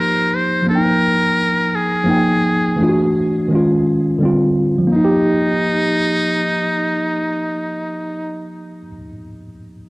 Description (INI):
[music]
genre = hip hop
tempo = 85 BPM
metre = 4/4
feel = swing 56% on 16ths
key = Eb major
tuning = A4 = 442 Hz
[part]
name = trumpet with metal mute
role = melody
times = 0.0-8.5 s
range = Eb4 to C5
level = -19 LUFS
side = equal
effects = low-pass filter, cassette tape
[part]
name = mellow tine electric piano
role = accompaniment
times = 0.0-9.9 s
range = D3 to G5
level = -16 LUFS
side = equal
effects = medium stereo tremolo, low-pass filter
[sound]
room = light reverb, studio reverb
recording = home recording on cassette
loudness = -14 LUFS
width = side -23 dB against mid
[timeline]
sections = 0.0-4.9 A section; 4.9-7.7 B section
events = none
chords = 0.0 Fm11; 2.8 D; 3.5 Db; 4.2 G7sus4/D; 4.9 Eb